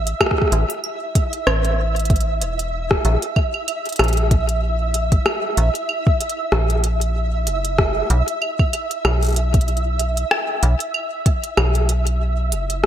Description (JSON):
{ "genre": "IDM", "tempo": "95 BPM", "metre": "4/4", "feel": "swing 56% on 16ths", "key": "unclear", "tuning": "A4 = 436 Hz", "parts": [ { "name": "metallic FM bass", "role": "bass", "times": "0.0-12.9 s", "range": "E1 to B1", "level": "-19 LUFS", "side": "equal", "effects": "none" }, { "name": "flickering grainy texture", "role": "texture", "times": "0.0-12.9 s", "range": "E5", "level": "-25 LUFS", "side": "right 2 dB", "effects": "built-in reverb, analog chorus" }, { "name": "organic electronic drum kit", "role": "drums", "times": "0.1-12.9 s", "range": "claves, hi-hat, rim click", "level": "-21 LUFS", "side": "equal", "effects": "gated reverb, ping-pong delay" }, { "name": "electronic kick drum", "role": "drums", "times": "0.2-11.4 s", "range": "none", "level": "-17 LUFS", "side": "equal", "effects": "none" } ], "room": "light reverb", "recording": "bright 1980s-style digital production", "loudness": "-17 LUFS", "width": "side -10 dB against mid", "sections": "0.0-12.9 A section", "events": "none", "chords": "0.0 A5; 3.0 F#7/A# (rootless); 8.1 B5" }